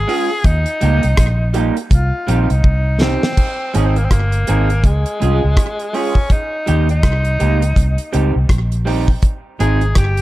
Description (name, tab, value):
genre	roots reggae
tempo	82 BPM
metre	4/4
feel	swing 60% on 16ths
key	Ab major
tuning	A4 = 440 Hz
part	bright tenor saxophone	melody	0.0-10.2 s	Ab3 to Ab4	-22 LUFS	left 1 dB	dub echo
part	vintage muted fingered electric bass	bass	0.0-10.2 s	G1 to Eb2	-15 LUFS	equal	none
part	electric guitar through a small old amp	accompaniment	0.1-9.8 s	G3 to Ab4	-22 LUFS	right 3 dB	dub echo
part	damped 70s drum kit	drums	0.1-10.2 s	crash cymbal, hi-hat, kick drum, rim click, snare drum	-16 LUFS	equal	none
room	little or no reverb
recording	none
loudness	-13 LUFS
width	side -16 dB against mid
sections	0.0-3.4 A section; 3.4-10.2 B section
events	drum fill 2.6-3.4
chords	0.4 Eb; 1.9 Cm; 3.4 Ab; 4.8 Db; 6.3 Eb; 7.8 Cm; 9.2 Ab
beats	| 0.44 1.17 1.90 2.64 | 3.37 4.10 4.83 5.57 | 6.30 7.03 7.76 8.50 | 9.23 9.96